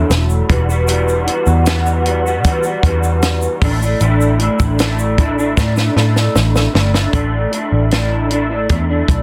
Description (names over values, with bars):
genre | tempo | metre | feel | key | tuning
indie pop, bedroom pop | 77 BPM | 4/4 | straight | unclear | A4 = 439 Hz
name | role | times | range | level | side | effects
electric guitar through a small old amp | accompaniment | 0.0-9.2 s | A2 to F#4 | -20 LUFS | equal | analog chorus, warbly pitch drift
vintage muted picked electric bass | bass | 0.0-9.2 s | E1 to E3 | -18 LUFS | equal | none
compact cocktail drum kit | drums | 0.1-9.2 s | hi-hat, kick drum, snare drum | -19 LUFS | equal | none
egg shaker | percussion | 0.1-7.1 s | none | -35 LUFS | equal | none
room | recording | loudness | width
light reverb | dense, heavily limited modern master | -15 LUFS | mono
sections
0.0-7.1 A section; 7.1-9.2 B section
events
drum fill 5.6-7.1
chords
0.5 Emadd9; 3.6 Asus4